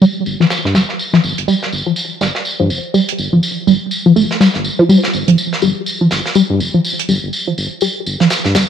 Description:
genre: minimal techno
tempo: 123 BPM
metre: 4/4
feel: swing 59% on 16ths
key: unclear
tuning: A4 = 440 Hz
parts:
  - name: resonant blip pluck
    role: riff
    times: 0.0-8.6 s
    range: F3 to A3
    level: -13 LUFS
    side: equal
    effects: phaser, tape echo
  - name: tight metal drum kit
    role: drums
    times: 0.0-8.7 s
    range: hi-hat, snare drum, tambourine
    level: -19 LUFS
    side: right 1 dB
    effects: high-pass filter on hats, low-pass filter on hats, studio reverb, high-pass filter on snare, low-pass filter on snare, high-pass filter on perc, low-pass filter on perc, high-pass filter on room, low-pass filter on room
  - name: round analog bass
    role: bass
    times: 0.3-8.6 s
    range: F1 to G2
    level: -20 LUFS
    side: equal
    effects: high-pass filter
room: light reverb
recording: none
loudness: -12 LUFS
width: side -8 dB against mid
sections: 0.0-8.7 A section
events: none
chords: 0.0 G5

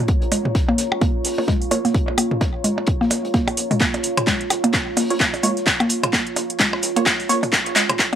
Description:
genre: minimal techno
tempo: 129 BPM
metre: 4/4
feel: swing 58% on 16ths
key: Bb minor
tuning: A4 = 440 Hz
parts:
  - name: deep dark ambient pad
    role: texture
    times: 0.0-8.2 s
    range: F4 to Bb5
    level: -26 LUFS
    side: right 2 dB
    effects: chorus, built-in reverb, sidechain pumping
  - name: cloth-damped thuddy drum kit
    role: drums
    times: 0.1-8.1 s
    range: hi-hat, snare drum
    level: -34 LUFS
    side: left 1 dB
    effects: high-pass filter on hats, high-pass filter on snare, high-pass filter on room
  - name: electronic kick drum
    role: drums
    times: 0.1-8.1 s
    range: none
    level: -21 LUFS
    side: equal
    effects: none
  - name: rubbery square bass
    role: bass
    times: 0.2-8.0 s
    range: Ab1 to Db2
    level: -38 LUFS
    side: left 1 dB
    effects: none
  - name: mallet-like synth pluck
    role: riff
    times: 0.3-8.2 s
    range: Ab3 to Bb3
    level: -23 LUFS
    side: equal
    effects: chorus, cassette tape, sidechain pumping, analog delay
  - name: house drum kit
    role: drums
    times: 0.3-8.2 s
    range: handclaps, hi-hat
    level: -20 LUFS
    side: equal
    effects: none
  - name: electronic percussion blips and toms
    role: percussion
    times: 0.3-8.2 s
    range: none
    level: -24 LUFS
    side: right 1 dB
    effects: analog delay
  - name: filtered dub chord stab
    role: stabs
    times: 1.4-1.8, 5.1-7.4 s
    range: Bb3 to Db5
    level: -26 LUFS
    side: right 3 dB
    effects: chorus, analog delay
room: moderate small room ambience, RT60 0.5 s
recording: dry, gritty hardware recording, high-pass filter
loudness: -17 LUFS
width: side -9 dB against mid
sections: 0.0-8.2 A section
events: build-up 0.0-8.2; filter sweep on synth arpeggio sound 0.0-8.2; filter sweep on synth stab 0.0-8.2; filter sweep 0.0-8.2; drum fill 3.8-8.2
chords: 0.0 Bbm

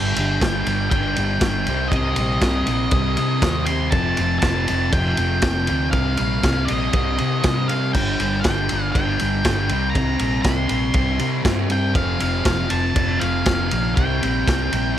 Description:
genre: garage rock duo or trio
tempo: 120 BPM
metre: 4/4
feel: straight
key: unclear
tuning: A4 = 440 Hz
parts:
  - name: octave-fuzz lead guitar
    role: melody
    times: 0.0-15.0 s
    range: Eb5 to C6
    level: -25 LUFS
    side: equal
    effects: distortion
  - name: thick fuzz guitar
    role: riff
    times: 0.0-15.0 s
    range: F2 to C4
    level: -23 LUFS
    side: equal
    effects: distortion
  - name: hollow-body short-scale fingered electric bass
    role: bass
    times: 0.0-15.0 s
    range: F1 to C3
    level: -24 LUFS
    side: equal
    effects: overdrive
  - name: crunchy breakbeat drum kit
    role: drums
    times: 0.2-14.8 s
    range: crash cymbal, kick drum, ride cymbal, snare drum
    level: -22 LUFS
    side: equal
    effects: none
room: light reverb, small room ambience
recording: none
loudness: -18 LUFS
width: side -11 dB against mid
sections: 0.0-15.0 A section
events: none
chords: 0.0 G5; 1.7 Cm; 3.9 F; 5.9 Cm; 8.0 G5; 9.7 C5; 12.0 F; 14.0 C5

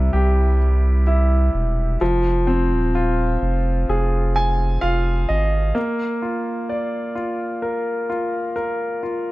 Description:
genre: pop ballad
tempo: 64 BPM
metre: 4/4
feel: straight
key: unclear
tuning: A4 = 440 Hz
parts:
  - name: bright grand piano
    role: accompaniment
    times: 0.0-9.3 s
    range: C3 to Ab5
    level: -21 LUFS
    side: left 1 dB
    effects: none
  - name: saturated sub bass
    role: bass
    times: 0.0-5.7 s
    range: Eb1 to C2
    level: -18 LUFS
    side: equal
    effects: none
room: light reverb, studio ambience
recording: dark, warm production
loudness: -18 LUFS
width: side -18 dB against mid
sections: 0.0-5.8 A section; 5.8-9.3 B section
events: grand piano fill 3.9-5.8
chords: 0.0 C; 2.0 Fm; 5.8 Bb

